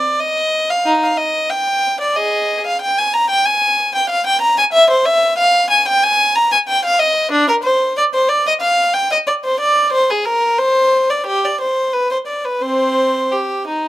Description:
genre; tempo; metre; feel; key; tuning
classical, baroque-style suite movement for unaccompanied violin; 92 BPM; 4/4; rubato; C minor; A4 = 440 Hz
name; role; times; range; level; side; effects
warm violin; solo; 0.0-13.9 s; C4 to Bb5; -13 LUFS; equal; none
room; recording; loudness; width
light reverb; close, detailed microphones; -13 LUFS; side -14 dB against mid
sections
0.0-13.9 A section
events
none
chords
none

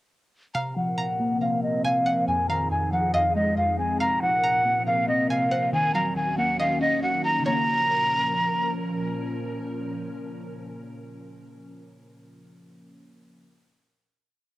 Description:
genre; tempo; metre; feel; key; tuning
hip hop, drill; 139 BPM; 4/4; half-time; Bb minor; A4 = 440 Hz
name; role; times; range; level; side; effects
breathy jazz flute; melody; 0.5-8.7 s; Eb5 to Bb5; -23 LUFS; equal; low-pass filter, cassette tape
string-like resonator pluck; second line; 0.5-8.7 s; Db5 to Bb5; -34 LUFS; right 1 dB; chorus, cassette tape, tape echo
glassy FM pad; sustained chords; 0.8-11.7 s; Eb2 to Bb4; -33 LUFS; equal; ensemble chorus, built-in reverb, low-pass filter, cassette tape
glassy digital keys; accompaniment; 0.6-13.4 s; F2 to C5; -29 LUFS; equal; chorus, low-pass filter, cassette tape
room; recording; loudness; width
light reverb; home recording on cassette; -22 LUFS; side -17 dB against mid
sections
0.5-7.5 breakdown; 7.5-10.9 final chord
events
filter sweep 0.5-7.5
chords
0.5 Bbsus2; 2.3 Fm7; 4.0 Bbsus2; 5.7 Ebm7; 7.5 Bbm

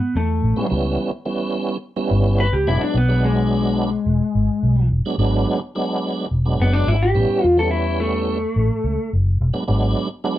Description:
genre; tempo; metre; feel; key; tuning
straight-eighth soul blues; 107 BPM; 4/4; straight; E mixolydian; A4 = 442 Hz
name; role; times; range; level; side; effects
electric guitar through a small old amp; melody; 0.0-9.1 s; G#3 to B4; -20 LUFS; left 2 dB; none
vintage muted fingered electric bass; bass; 0.2-9.9 s; E1 to E2; -19 LUFS; equal; none
tonewheel organ; accompaniment; 0.6-10.4 s; E3 to D4; -22 LUFS; right 3 dB; overdrive, chorus vibrato, slow rotary speaker
room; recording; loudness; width
moderate studio reverb, RT60 0.5 s; band playing live in one room; -17 LUFS; side -14 dB against mid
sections
0.0-10.4 A section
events
clean electric guitar solo 0.0-10.4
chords
0.4 A7 (rootless); 2.7 E7; 7.2 A7; 9.4 E7

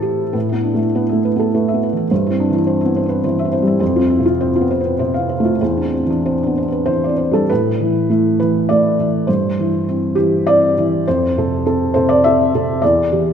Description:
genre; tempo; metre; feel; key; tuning
neoclassical minimalist piano; 93-107 BPM; 3/4; rubato; A minor; A4 = 441 Hz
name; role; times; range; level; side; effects
felt-muted upright piano; solo; 0.0-13.3 s; E2 to F5; -14 LUFS; equal; none
room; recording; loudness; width
moderate scoring stage reverb, RT60 1.9 s; recorded in a church or concert hall; -14 LUFS; side -8 dB against mid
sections
0.3-7.5 A section; 7.5-13.3 B section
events
none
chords
0.3 Asus2; 2.1 C/G; 3.8 F5; 5.6 Cadd9/E; 7.5 Asus2; 9.3 C/G; 11.1 F; 12.8 Cadd9/E (rootless)

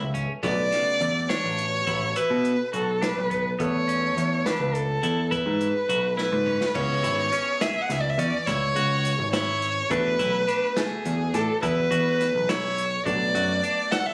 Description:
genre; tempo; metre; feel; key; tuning
progressive instrumental, band music in an uneven meter; 209 BPM (eighths); 11/8; straight; unclear; A4 = 441 Hz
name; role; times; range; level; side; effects
warm violin; melody; 0.0-14.1 s; G#4 to F#5; -27 LUFS; equal; none
warm grand piano; accompaniment; 0.0-14.1 s; D3 to A4; -38 LUFS; equal; none
clean electric guitar; arpeggios; 0.0-14.1 s; C#3 to A4; -34 LUFS; equal; phaser
overdriven picked electric bass; bass; 0.0-13.6 s; G#1 to B2; -30 LUFS; equal; none
open jazz drum kit; drums; 0.1-14.1 s; crash cymbal, hi-hat, kick drum, snare drum, toms; -34 LUFS; equal; none
room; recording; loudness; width
light reverb; recorded on a phone in the room, club reverb; -25 LUFS; mono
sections
0.0-6.8 A section; 6.8-14.1 B section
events
drum fill 6.2-6.8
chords
0.4 Bm7; 3.6 Esus4; 6.8 C#m7; 9.9 E7sus4; 13.1 Bm7

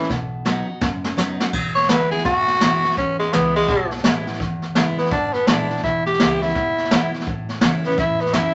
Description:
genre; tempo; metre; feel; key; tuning
rockabilly; 167 BPM; 4/4; swing 62% on 8ths; E mixolydian; A4 = 440 Hz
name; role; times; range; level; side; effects
raspy tenor saxophone; melody; 0.0-8.5 s; G#3 to C#5; -21 LUFS; equal; none
picked steel-string acoustic guitar; accompaniment; 0.0-8.5 s; E2 to F#4; -27 LUFS; equal; none
jazz brush drum kit; drums; 0.0-8.4 s; crash cymbal, hi-hat, kick drum, snare drum; -24 LUFS; equal; none
upright bass; bass; 0.1-8.5 s; F#1 to C#3; -35 LUFS; equal; none
room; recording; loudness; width
moderate studio reverb, RT60 0.6 s; nothing above 7.9 kHz; -20 LUFS; mono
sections
0.0-1.5 A section; 1.5-8.5 B section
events
drum fill 0.1-1.5; tenor saxophone solo 1.5-8.5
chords
0.1 B; 1.5 E; 7.3 A

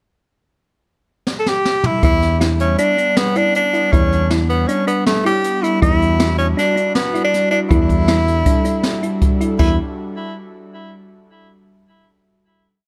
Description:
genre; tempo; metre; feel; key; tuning
progressive instrumental, band music in an uneven meter; 158 BPM; 5/4; straight; E dorian; A4 = 437 Hz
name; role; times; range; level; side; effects
jazz brush drum kit; drums; 1.3-9.7 s; crash cymbal, hi-hat, kick drum, snare drum, toms; -21 LUFS; equal; none
clear tenor saxophone; melody; 1.4-9.8 s; A3 to A4; -20 LUFS; equal; delay
thumb-piano-like synth pluck; arpeggios; 2.0-9.8 s; D4 to E4; -26 LUFS; equal; chorus
fingered electric bass; bass; 2.0-9.8 s; E2; -20 LUFS; equal; none
airy breathy pad; accompaniment; 2.1-9.8 s; G3 to A4; -25 LUFS; equal; chorus
room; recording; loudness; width
light reverb; none; -16 LUFS; mono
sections
0.1-2.0 pickup bar; 2.0-9.6 A section; 9.6-11.5 final chord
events
drum fill 1.3-2.0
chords
0.1 N.C.; 2.0 Em7; 5.8 Em9

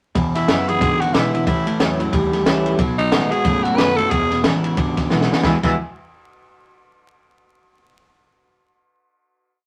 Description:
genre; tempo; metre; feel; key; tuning
rockabilly; 182 BPM; 4/4; swing 60% on 8ths; E major; A4 = 439 Hz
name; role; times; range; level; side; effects
picked steel-string acoustic guitar; accompaniment; 0.1-5.7 s; E2 to F#4; -25 LUFS; equal; none
electric guitar through a small old amp; riff; 0.1-5.7 s; E2 to G#4; -24 LUFS; equal; none
upright bass; bass; 0.2-5.8 s; E1 to B2; -32 LUFS; equal; none
compact cocktail drum kit; drums; 0.2-5.7 s; crash cymbal, kick drum, ride cymbal, snare drum; -23 LUFS; equal; none
growling tenor saxophone; melody; 0.4-5.8 s; D#4 to B4; -23 LUFS; equal; none
room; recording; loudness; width
moderate studio reverb, RT60 0.6 s; vinyl crackle; -18 LUFS; mono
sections
0.2-5.4 A section; 5.4-6.8 final chord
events
drum fill 5.1-5.4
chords
0.2 E; 1.5 A; 2.8 B7; 4.1 E

